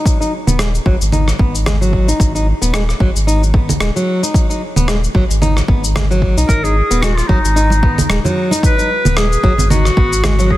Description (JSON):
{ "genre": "organic downtempo", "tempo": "112 BPM", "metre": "4/4", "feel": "swing 56% on 16ths", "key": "G# minor", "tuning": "A4 = 438 Hz", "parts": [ { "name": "flamenco guitar", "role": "arpeggios", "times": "0.0-10.6 s", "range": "F#3 to D#4", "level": "-19 LUFS", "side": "equal", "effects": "low-pass filter, digital delay" }, { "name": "electronic kick drum", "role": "drums", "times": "0.1-10.6 s", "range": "none", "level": "-15 LUFS", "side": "equal", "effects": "overdrive" }, { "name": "electronic shaker, congas and rim click", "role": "drums", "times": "0.1-10.5 s", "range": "none", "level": "-20 LUFS", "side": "right 1 dB", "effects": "soft clipping on snare" }, { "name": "warm sub bass", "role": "bass", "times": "0.5-10.6 s", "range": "D#1 to B1", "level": "-15 LUFS", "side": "equal", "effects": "sidechain pumping" }, { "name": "clear clarinet", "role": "melody", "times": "6.5-10.6 s", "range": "D#4 to B4", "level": "-17 LUFS", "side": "left 1 dB", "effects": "digital delay" }, { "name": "congas", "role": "percussion", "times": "7.7-10.5 s", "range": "none", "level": "-22 LUFS", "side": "right 2 dB", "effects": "none" } ], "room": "digital ambience", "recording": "dense, heavily limited modern master", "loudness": "-12 LUFS", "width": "side -15 dB against mid", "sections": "0.0-10.6 A section", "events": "none", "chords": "0.0 G#m7", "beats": "| 0.06 0.59 1.13 1.67 | 2.20 2.74 3.27 3.81 | 4.34 4.88 5.42 5.95 | 6.49 7.02 7.56 8.09 | 8.63 9.16 9.70 10.24" }